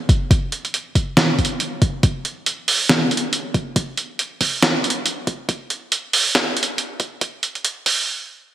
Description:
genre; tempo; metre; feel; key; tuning
deep dubstep; 139 BPM; 4/4; swing 58% on 16ths, half-time; none; none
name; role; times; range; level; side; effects
electronic kick drum; drums; 0.1-8.0 s; none; -18 LUFS; equal; overdrive, small room ambience
trip hop sampler-style drum kit; drums; 0.1-8.0 s; hi-hat, snare drum; -18 LUFS; right 1 dB; small room ambience
room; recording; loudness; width
moderate lush hall reverb, RT60 2.4 s; high-pass filter; -18 LUFS; side -12 dB against mid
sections
0.0-8.5 A section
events
build-up 0.0-8.5; filter sweep 0.0-8.5; stop 8.1-8.5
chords
none

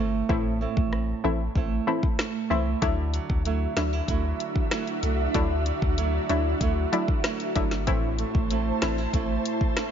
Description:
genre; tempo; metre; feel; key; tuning
dancehall; 95 BPM; 4/4; straight; D mixolydian; A4 = 445 Hz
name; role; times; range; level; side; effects
nylon-string guitar; arpeggios; 0.0-9.9 s; A2 to E4; -30 LUFS; right 8 dB; none
punchy sub bass; bass; 0.0-9.4 s; G1 to D2; -28 LUFS; left 1 dB; none
punchy chord stab; accompaniment; 0.3-9.0 s; E3 to E4; -29 LUFS; left 2 dB; chorus
afro-pop drum kit; drums; 0.3-9.9 s; hi-hat, kick drum, rim click, snare drum; -27 LUFS; left 1 dB; none
ethereal airy pad; sustained chords; 3.2-9.9 s; D4 to A5; -31 LUFS; equal; ensemble chorus, built-in reverb
room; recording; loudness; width
little or no reverb; nothing above 7.5 kHz; -23 LUFS; side -8 dB against mid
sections
0.0-2.8 A section; 2.8-9.9 B section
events
none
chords
0.0 Am; 2.8 Dadd9; 7.9 Am

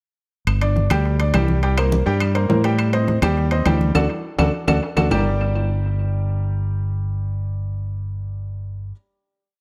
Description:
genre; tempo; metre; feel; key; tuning
latin, salsa; 206 BPM; 4/4; straight; G minor; A4 = 440 Hz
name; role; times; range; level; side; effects
fingered electric bass; bass; 0.5-8.9 s; G1 to A2; -22 LUFS; equal; none
claves; percussion; 0.5-5.2 s; none; -33 LUFS; equal; analog delay
congas; percussion; 0.5-5.2 s; none; -27 LUFS; equal; none
timbales; percussion; 0.5-5.2 s; none; -29 LUFS; equal; analog delay
bright grand piano; accompaniment; 0.6-8.9 s; G3 to G5; -26 LUFS; equal; none
room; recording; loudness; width
light reverb, studio reverb; echo-heavy mix; -20 LUFS; mono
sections
0.5-5.1 montuno (vamp); 5.1-7.5 final chord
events
band accent 4.0-5.1; drum fill 4.2-5.1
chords
0.5 G5; 1.6 C5; 2.8 Am7b5; 4.0 D; 5.1 Gm

